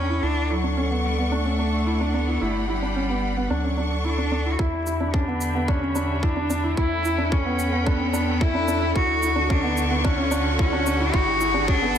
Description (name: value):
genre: piano and strings electronica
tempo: 110 BPM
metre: 4/4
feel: straight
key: unclear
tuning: A4 = 440 Hz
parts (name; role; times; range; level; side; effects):
- rich cello; melody; 0.0-12.0 s; F#3 to F#4; -26 LUFS; left 1 dB; low-pass filter, digital delay
- clear studio string section; sustained chords; 0.0-12.0 s; D3 to C#6; -30 LUFS; equal; sidechain pumping, low-pass filter
- felt-muted upright piano; riff; 0.0-12.0 s; B3 to E4; -26 LUFS; right 1 dB; digital delay
- round analog bass; bass; 0.0-12.0 s; G1 to E2; -27 LUFS; equal; sidechain pumping
- electronic kick drum; drums; 4.6-11.8 s; none; -24 LUFS; equal; overdrive
- riser; sound effects; 6.5-12.0 s; none; -33 LUFS; equal; none
- shaker; drums; 4.9-12.0 s; none; -37 LUFS; equal; overdrive, low-pass filter on perc, low-pass filter on room
room: light reverb, small room ambience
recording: none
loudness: -20 LUFS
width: side -9 dB against mid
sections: 0.0-4.6 A section; 4.6-12.0 B section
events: build-up 4.6-12.0; filter sweep on string section 4.6-12.0; filter sweep on cello 4.6-12.0; riser 6.5-12.0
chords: 0.2 Dmaj7; 2.4 Gmaj7; 3.5 Dmaj7; 4.6 Em7; 6.8 A9/E; 9.0 Dmaj7; 11.1 Gmaj7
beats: | 0.23 0.77 1.32 1.86 | 2.41 2.96 3.50 4.05 | 4.59 5.14 5.68 6.23 | 6.77 7.32 7.87 8.41 | 8.96 9.50 10.05 10.59 | 11.14 11.68